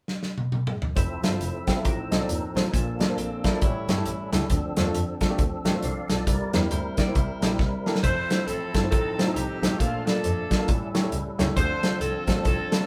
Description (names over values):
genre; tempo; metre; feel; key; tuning
uptempo gospel; 136 BPM; 4/4; swing 60% on 8ths; F major; A4 = 440 Hz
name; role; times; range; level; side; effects
natural country drum kit; drums; 0.1-12.8 s; hi-hat, kick drum, snare drum, toms; -27 LUFS; equal; none
percussive tonewheel organ; sustained chords; 1.0-12.9 s; F3 to F5; -35 LUFS; equal; slow rotary speaker, overdrive, chorus vibrato
warm double bass; bass; 1.0-12.5 s; F1 to F2; -33 LUFS; equal; none
dark upright piano; accompaniment; 1.2-12.9 s; A2 to G5; -32 LUFS; equal; none
clean electric guitar; second line; 3.2-7.8 s; C4 to D5; -39 LUFS; equal; none
growling alto saxophone; melody; 8.0-12.9 s; F4 to C5; -33 LUFS; equal; none
warm saxophone section; melody; 8.0-12.9 s; A3 to C5; -35 LUFS; equal; none
room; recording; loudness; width
moderate studio reverb, RT60 0.6 s; band playing live in one room; -25 LUFS; mono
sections
1.0-8.0 A section; 8.0-12.9 B section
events
drum fill 0.1-1.0, 7.6-8.0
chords
0.0 N.C.; 1.0 Fmaj7; 1.9 F7/A; 2.7 Bbmaj7; 3.6 A7; 4.5 Dm7; 6.3 C7; 8.0 Fmaj7; 8.9 F7/A; 9.8 Bbmaj7; 10.7 A7; 11.6 Dm7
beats
0.08 0.53 | 0.97 1.41 1.85 2.29 | 2.74 3.18 3.62 4.06 | 4.50 4.94 5.39 5.83 | 6.27 6.71 7.15 7.59 | 8.04 8.48 8.92 9.36 | 9.80 10.24 10.69 11.13 | 11.57 12.01 12.45